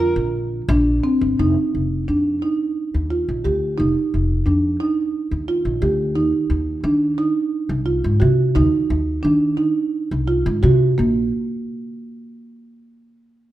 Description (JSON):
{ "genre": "contemporary instrumental, chamber music in an uneven meter", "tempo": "176 BPM (eighths)", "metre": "7/8", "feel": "straight", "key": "unclear", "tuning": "A4 = 440 Hz", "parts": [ { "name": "warm soprano saxophone", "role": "melody", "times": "0.0-0.7 s", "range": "Bb4", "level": "-28 LUFS", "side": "right 2 dB", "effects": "none" }, { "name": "marimba with soft mallets", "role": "arpeggios", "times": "0.0-11.3 s", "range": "Bb3 to G4", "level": "-19 LUFS", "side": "right 2 dB", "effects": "none" }, { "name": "upright bass", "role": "bass", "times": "0.0-11.3 s", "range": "F1 to Eb3", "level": "-20 LUFS", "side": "left 1 dB", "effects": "none" } ], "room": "light reverb", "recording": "none", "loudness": "-17 LUFS", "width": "side -14 dB against mid", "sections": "0.0-1.4 A section; 1.4-11.0 B section; 11.0-13.4 C section", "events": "none", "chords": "0.0 Bb; 1.4 F7sus2; 6.2 Ebmadd9; 11.0 N.C.", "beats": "0.33 0.68 1.03 | 1.39 1.73 2.08 2.42 2.77 3.11 3.45 | 3.79 4.13 4.47 4.81 5.15 5.49 5.83 | 6.17 6.51 6.85 7.19 7.53 7.87 8.21 | 8.55 8.89 9.24 9.58 9.93 10.28 10.63 | 10.98" }